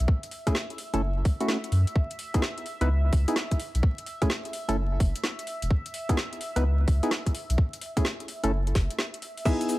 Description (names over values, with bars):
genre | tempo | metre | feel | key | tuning
UK garage, two-step garage | 128 BPM | 4/4 | swing 65% on 16ths | unclear | A4 = 440 Hz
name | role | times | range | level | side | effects
warm analog pad | sustained chords | 0.0-9.8 s | E5 to E6 | -40 LUFS | right 1 dB | chorus, sidechain pumping
soft dub sub bass | bass | 0.0-8.9 s | E1 to F#2 | -24 LUFS | equal | none
garage drum kit | drums | 0.0-9.8 s | crash cymbal, hi-hat, rim click, shaker, snare drum | -32 LUFS | equal | studio ambience
electronic kick drum | drums | 0.1-9.6 s | none | -23 LUFS | equal | studio ambience
percussive organ stab | stabs | 0.5-9.8 s | A3 to B4 | -30 LUFS | equal | chorus, digital delay
string-like resonator pluck | melody | 9.5-9.7 s | E5 | -36 LUFS | left 2 dB | chorus
room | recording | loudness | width
digital ambience | vinyl crackle | -25 LUFS | side -18 dB against mid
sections
0.0-9.5 A section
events
break 9.0-9.5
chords
0.1 F#m7; 2.0 C#m9; 3.8 F#m7; 5.7 C#m9; 7.6 F#m7